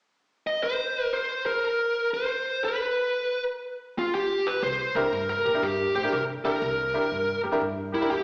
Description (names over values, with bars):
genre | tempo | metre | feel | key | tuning
blues | 120 BPM | 4/4 | swing 66% on 8ths | C mixolydian | A4 = 440 Hz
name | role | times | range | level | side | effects
smooth overdriven lead guitar | melody | 0.5-8.2 s | E4 to Eb5 | -28 LUFS | equal | slapback echo, analog delay
upright bass | bass | 4.6-8.2 s | C2 to C3 | -40 LUFS | equal | none
bright grand piano | accompaniment | 5.0-8.1 s | D4 to C5 | -30 LUFS | equal | slapback echo
room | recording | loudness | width
wet club reverb, RT60 0.6 s | live gig heard through the venue's PA, recital hall reverb, small speaker sound | -27 LUFS | mono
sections
0.6-4.6 A section; 4.6-8.2 B section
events
none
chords
0.0 N.C.; 4.6 C9